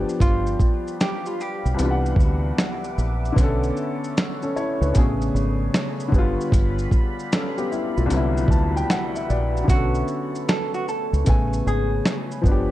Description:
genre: lo-fi hip hop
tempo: 76 BPM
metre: 4/4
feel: swing 65% on 16ths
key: A major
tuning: A4 = 440 Hz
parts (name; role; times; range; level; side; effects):
- warm upright piano; accompaniment; 0.0-12.7 s; C2 to A5; -25 LUFS; left 2 dB; cassette tape
- deep dark ambient pad; sustained chords; 0.0-12.7 s; F#4 to D6; -34 LUFS; right 1 dB; chorus, built-in reverb
- deep dub fingered electric bass; bass; 0.0-12.7 s; G1 to D2; -23 LUFS; equal; none
- dusty soul sampler-style drum kit; drums; 0.1-12.7 s; hi-hat, kick drum, shaker, snare drum; -21 LUFS; equal; vintage 12-bit sampler grit
- vintage hollow-body jazz guitar; melody; 0.2-2.8, 9.7-12.3 s; F4 to A4; -29 LUFS; right 2 dB; tape echo
room: digital ambience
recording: none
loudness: -19 LUFS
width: side -15 dB against mid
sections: 0.0-12.7 A section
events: none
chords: 0.0 G7; 1.8 Cmaj9#11; 3.4 Bm9; 4.9 Amaj9; 6.1 G7; 8.1 Cmaj9#11; 9.7 Bm9; 11.3 Amaj9

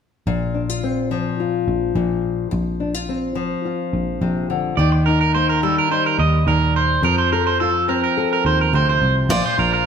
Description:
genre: highlife guitar band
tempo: 106 BPM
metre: 4/4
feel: straight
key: Bb major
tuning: A4 = 441 Hz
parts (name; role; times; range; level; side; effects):
- nylon-string guitar; accompaniment; 0.3-9.9 s; Bb2 to A4; -22 LUFS; left 5 dB; none
- picked electric bass; bass; 0.3-9.9 s; Bb1 to F2; -21 LUFS; right 1 dB; none
- electric guitar at the edge of break-up; arpeggios; 4.8-9.9 s; A4 to Eb5; -18 LUFS; right 4 dB; spring reverb
- picked steel-string acoustic guitar; melody; 9.3-9.9 s; F4 to C5; -21 LUFS; equal; none
room: wet stone room reverb, RT60 1.2 s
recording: band playing live in one room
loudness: -17 LUFS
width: side -7 dB against mid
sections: 0.3-9.3 A section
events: none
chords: 0.3 Bbsus2; 4.8 Eb; 7.0 F; 9.3 Bbsus2

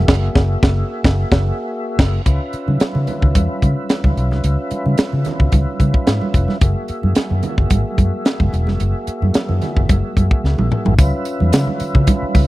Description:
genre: funk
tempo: 110 BPM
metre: 4/4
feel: straight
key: unclear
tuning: A4 = 443 Hz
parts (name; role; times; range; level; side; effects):
- mellow tonewheel organ; sustained chords; 0.0-12.5 s; Bb3 to E5; -25 LUFS; equal; chorus vibrato, slow rotary speaker
- vintage muted fingered electric bass; bass; 0.0-12.5 s; Fb1 to Db3; -17 LUFS; equal; none
- tight funk drum kit; drums; 0.1-12.5 s; crash cymbal, hi-hat, kick drum, snare drum, toms; -16 LUFS; equal; none
- congas; percussion; 2.7-12.5 s; none; -24 LUFS; right 4 dB; none
- tambourine; percussion; 11.0-12.5 s; none; -38 LUFS; left 6 dB; none
room: studio ambience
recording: dry, close 1970s-style studio recording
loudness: -14 LUFS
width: side -18 dB against mid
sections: 0.0-2.3 A section; 2.3-11.0 B section; 11.0-12.5 A section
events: band accent 0.1-2.3; drum fill 10.4-11.0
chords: 0.0 Gb9; 2.3 Db7#9; 6.6 Gb9; 11.0 Db7#9

